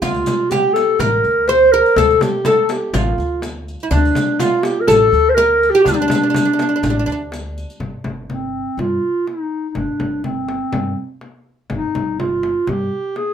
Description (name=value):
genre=Arabic maqam ensemble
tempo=123 BPM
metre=4/4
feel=straight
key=D maqam bayati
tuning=A4 = 440 Hz
part: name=dark clarinet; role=melody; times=0.0-13.3 s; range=C4 to C5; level=-16 LUFS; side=left 1 dB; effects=none
part: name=oud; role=second line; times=0.0-7.2 s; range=D4 to C5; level=-19 LUFS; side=right 4 dB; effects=none
part: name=upright bass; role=bass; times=0.0-12.9 s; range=G1 to G2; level=-23 LUFS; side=equal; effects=none
part: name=frame drum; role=percussion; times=0.0-13.3 s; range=none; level=-25 LUFS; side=left 2 dB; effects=none
part: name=riq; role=percussion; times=0.0-7.8 s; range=none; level=-29 LUFS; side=left 5 dB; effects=none
room=moderate small room ambience, RT60 0.5 s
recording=minimal, uncompressed stereo recording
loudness=-14 LUFS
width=side -8 dB against mid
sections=0.0-7.8 A section; 7.8-13.3 B section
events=none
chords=none